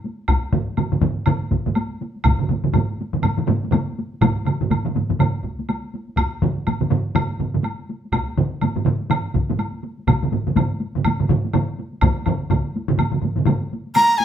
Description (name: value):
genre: japanese traditional, taiko drum ensemble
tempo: 123 BPM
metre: 4/4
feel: swing 60% on 16ths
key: unclear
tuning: A4 = 439 Hz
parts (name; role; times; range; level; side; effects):
- taiko ensemble; percussion; 0.0-14.2 s; none; -27 LUFS; left 1 dB; none
- taiko ensemble; percussion; 0.3-12.6 s; none; -23 LUFS; left 1 dB; none
- woodblock; percussion; 0.3-14.1 s; none; -28 LUFS; equal; none
- taiko ensemble; percussion; 0.5-13.6 s; none; -23 LUFS; left 1 dB; none
- taiko ensemble; percussion; 0.5-13.6 s; none; -22 LUFS; right 3 dB; none
- breathy bright large dizi; melody; 13.9-14.2 s; Ab5 to Bb5; -13 LUFS; equal; none
room: wet studio reverb, RT60 0.8 s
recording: band playing live in one room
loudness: -19 LUFS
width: side -9 dB against mid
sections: 0.0-14.0 A section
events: none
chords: none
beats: | 0.28 0.78 1.27 1.76 | 2.25 2.74 3.23 3.72 | 4.21 4.70 5.19 5.68 | 6.17 6.66 7.15 7.64 | 8.12 8.61 9.10 9.59 | 10.07 10.56 11.05 11.53 | 12.02 12.51 12.99 13.47 | 13.96